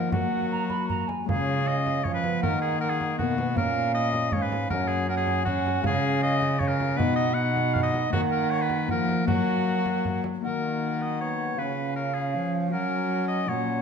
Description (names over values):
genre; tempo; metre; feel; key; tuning
classical, renaissance-style consort dance; 157 BPM; 3/4; straight; Db mixolydian; A4 = 438 Hz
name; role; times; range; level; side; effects
bright oboe; melody; 0.0-13.8 s; Gb4 to Gb5; -30 LUFS; left 4 dB; none
mellow hollow tenor recorder; second line; 0.0-13.8 s; F5 to Cb6; -30 LUFS; right 5 dB; none
Celtic harp; accompaniment; 0.0-13.8 s; Gb2 to Gb5; -32 LUFS; left 9 dB; none
clear trombone; accompaniment; 0.0-13.8 s; Bb3 to Eb4; -32 LUFS; left 1 dB; none
warm cello; bass; 0.0-13.8 s; Gb2 to Gb3; -29 LUFS; right 2 dB; none
frame drum; percussion; 0.1-10.4 s; none; -33 LUFS; right 3 dB; none
room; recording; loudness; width
wet recital hall reverb, RT60 1.3 s; none; -23 LUFS; side -6 dB against mid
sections
0.0-1.3 A section; 1.3-10.4 A section; 10.4-13.8 B section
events
none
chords
0.1 Gb; 1.3 Db; 2.4 Ebm; 3.6 Bbm; 4.7 Gb; 5.8 Db; 7.0 Cb; 8.1 Ebm; 9.3 Gb; 10.4 Ebm; 11.6 Db7; 12.7 Gb